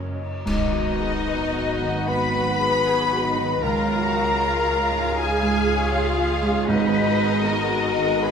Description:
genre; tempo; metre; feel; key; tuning
cinematic, emotional film score for orchestra; 72-82 BPM; 4/4; rubato; G# minor; A4 = 440 Hz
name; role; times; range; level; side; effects
rich symphonic violin section; melody; 0.0-8.3 s; D#5 to B5; -28 LUFS; left 4 dB; none
warm clarinet; second line; 0.0-8.3 s; D#4 to B4; -30 LUFS; left 1 dB; none
clear symphonic viola section; accompaniment; 0.0-8.3 s; F#3 to E#5; -30 LUFS; right 2 dB; none
warm baby grand piano; accompaniment; 0.0-8.3 s; C#2 to C#5; -27 LUFS; right 3 dB; none
concert harp; arpeggios; 0.0-8.3 s; F#2 to G#5; -30 LUFS; left 6 dB; none
rich symphonic double bass section; bass; 0.0-8.3 s; F#1 to C#2; -30 LUFS; right 2 dB; none
warm symphonic cello section; bass; 0.0-8.3 s; F#2 to B4; -29 LUFS; right 2 dB; none
mellow hollow silver concert flute; second line; 0.5-8.3 s; D#5 to B5; -29 LUFS; left 1 dB; none
warm symphonic violin section; second line; 0.5-8.3 s; D#4 to B4; -30 LUFS; left 4 dB; none
dark French horn section; sustained chords; 0.5-8.3 s; F#3 to F#4; -32 LUFS; left 3 dB; none
clash cymbals and concert bass drum; percussion; 0.5-2.0 s; none; -31 LUFS; equal; none
timpani; percussion; 6.7-7.8 s; G#2; -32 LUFS; right 3 dB; none
room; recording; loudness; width
wet scoring stage reverb, RT60 1.9 s; minimal, uncompressed stereo recording; -19 LUFS; side -7 dB against mid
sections
0.5-8.3 A section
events
band accent 0.5-1.3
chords
0.5 G#m7; 3.6 C#; 6.7 G#m7

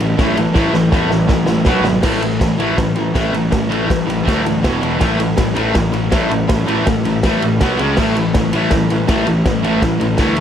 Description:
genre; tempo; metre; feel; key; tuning
garage rock duo or trio; 162 BPM; 4/4; straight; unclear; A4 = 442 Hz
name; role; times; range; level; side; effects
fuzz guitar; riff; 0.0-10.4 s; E2 to C#4; -16 LUFS; left 1 dB; distortion
fuzz picked electric bass; bass; 0.0-10.4 s; E1 to E2; -22 LUFS; right 1 dB; overdrive
raw garage drum kit; drums; 0.0-10.4 s; crash cymbal, kick drum, ride cymbal, snare drum; -18 LUFS; equal; none
room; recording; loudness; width
light reverb; lossy compression artefacts; -13 LUFS; side -9 dB against mid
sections
0.0-2.0 A section; 2.0-10.4 B section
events
drum fill 0.5-2.0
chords
0.0 A5; 1.7 B5; 2.0 A5; 4.6 E5; 5.0 A5; 7.6 B5; 7.8 C#5; 8.0 A5

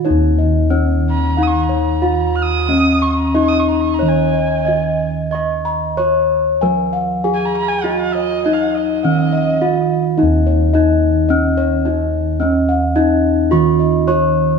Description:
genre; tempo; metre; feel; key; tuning
Javanese gamelan; 91-107 BPM; 4/4; straight; Eb slendro; A4 = 444 Hz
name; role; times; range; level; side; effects
gamelan-type bronze metallophone; melody; 0.0-14.6 s; Db4-45c to Eb5; -17 LUFS; left 3 dB; none
gamelan-type bossed gongs; arpeggios; 0.0-14.4 s; Db5-45c to Db6-45c; -22 LUFS; left 1 dB; none
gamelan-type bossed gongs; bass; 0.0-14.6 s; Eb2 to Eb5; -17 LUFS; right 1 dB; none
dark erhu; second line; 1.1-9.9 s; Eb5 to F6+33c; -22 LUFS; right 4 dB; none
room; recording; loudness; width
moderate concert hall reverb, RT60 2.0 s; studio ambience; -13 LUFS; side -5 dB against mid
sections
0.1-10.2 A section; 10.2-14.6 B section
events
none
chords
none

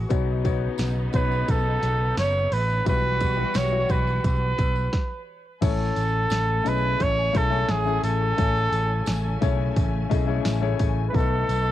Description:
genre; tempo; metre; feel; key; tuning
piano-driven pop; 87 BPM; 4/4; straight; unclear; A4 = 445 Hz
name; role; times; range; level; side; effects
warm grand piano; accompaniment; 0.0-11.7 s; A2 to G#5; -30 LUFS; left 12 dB; cassette tape
clear studio string section; sustained chords; 0.0-11.7 s; C#3 to G#5; -35 LUFS; equal; cassette tape
picked electric bass; bass; 0.0-11.7 s; F#1 to B1; -25 LUFS; equal; none
house drum kit; drums; 0.1-11.7 s; crash cymbal, hi-hat, kick drum, snare drum; -26 LUFS; equal; cassette tape
tambourine; percussion; 0.1-11.7 s; none; -47 LUFS; right 15 dB; none
warm trumpet; melody; 1.1-11.7 s; G#4 to C#5; -26 LUFS; right 1 dB; none
room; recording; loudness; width
light reverb; home recording on cassette; -21 LUFS; side -13 dB against mid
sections
0.0-5.6 A section; 5.6-11.7 B section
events
stop 4.9-5.6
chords
0.1 Badd9; 2.9 Emadd9/B; 5.6 Amaj7; 11.1 B7

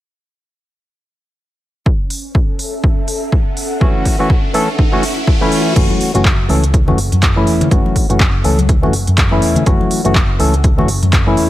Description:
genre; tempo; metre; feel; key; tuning
deep house; 123 BPM; 4/4; swing 58% on 16ths; F# minor; A4 = 439 Hz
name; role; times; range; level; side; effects
electronic kick drum; drums; 1.9-11.2 s; none; -14 LUFS; equal; none
riser; sound effects; 3.6-5.8 s; none; -25 LUFS; equal; none
airy breathy pad; texture; 1.9-11.5 s; C#4 to F#5; -27 LUFS; equal; chorus, sidechain pumping
deep house drum kit; drums; 2.1-11.5 s; crash cymbal, handclaps, hi-hat; -20 LUFS; equal; none
percussive organ stab; stabs; 3.8-11.5 s; E3 to A4; -16 LUFS; equal; chorus, sidechain pumping, tape echo
fingered electric bass; bass; 5.8-11.5 s; E1 to F#2; -16 LUFS; equal; sidechain pumping
congas; percussion; 5.9-11.1 s; none; -21 LUFS; left 3 dB; none
room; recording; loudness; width
light reverb; none; -11 LUFS; side -14 dB against mid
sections
1.9-5.8 A section; 5.8-11.5 B section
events
riser 3.6-5.8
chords
1.9 F#m7

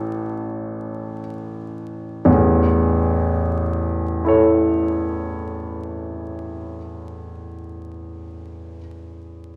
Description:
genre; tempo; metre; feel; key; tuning
classical, romantic nocturne for solo piano; 30 BPM; 4/4; rubato; A major; A4 = 440 Hz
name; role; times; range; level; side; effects
warm concert grand piano; solo; 0.0-9.6 s; A1 to C#5; -22 LUFS; equal; none
room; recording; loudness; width
wet recital hall reverb, RT60 1.4 s; vinyl crackle; -21 LUFS; mono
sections
0.0-2.3 A section; 2.3-9.6 B section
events
slowing down 0.0-2.3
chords
0.0 A

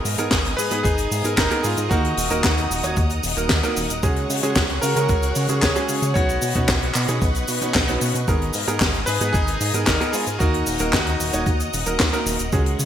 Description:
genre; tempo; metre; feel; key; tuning
italo disco; 113 BPM; 4/4; straight; Eb minor; A4 = 441 Hz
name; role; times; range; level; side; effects
string machine, full ensemble; sustained chords; 0.0-12.9 s; Ab4 to Eb6; -29 LUFS; equal; ensemble chorus
clear grand piano; stabs; 0.0-12.9 s; Ab3 to Db5; -26 LUFS; right 2 dB; none
chorused synth bass; bass; 0.0-12.9 s; Eb1 to Db3; -25 LUFS; equal; tube saturation
tight funk drum kit; drums; 0.1-12.9 s; cabasa, handclaps, hi-hat, snare drum; -23 LUFS; left 1 dB; gated reverb
electronic kick drum; drums; 0.3-12.6 s; none; -23 LUFS; equal; none
bright electric grand piano; melody; 0.6-11.4 s; Db4 to C#5; -25 LUFS; equal; lush chorus, digital delay
room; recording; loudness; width
moderate lush hall reverb, RT60 1.9 s, studio ambience; bright 1980s-style digital production; -18 LUFS; side -10 dB against mid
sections
0.0-12.9 A section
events
none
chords
0.0 Abmadd9; 1.9 Ebm; 4.0 Dbsus4; 6.2 Badd9; 8.3 Abmadd9; 10.4 Ebm

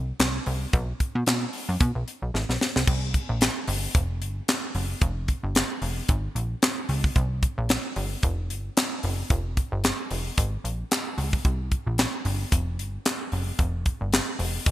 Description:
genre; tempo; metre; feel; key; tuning
early-eighties boogie funk; 112 BPM; 4/4; swing 56% on 16ths; unclear; A4 = 436 Hz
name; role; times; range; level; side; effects
plucky analog bass; bass; 0.0-14.7 s; F1 to B2; -27 LUFS; equal; none
tight funk drum kit; drums; 0.2-14.7 s; crash cymbal, handclaps, hi-hat, kick drum, snare drum; -24 LUFS; equal; none
room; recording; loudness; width
light reverb; bright 1980s-style digital production; -24 LUFS; side -15 dB against mid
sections
0.0-2.9 A section; 2.9-14.7 B section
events
drum fill 2.3-2.9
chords
none

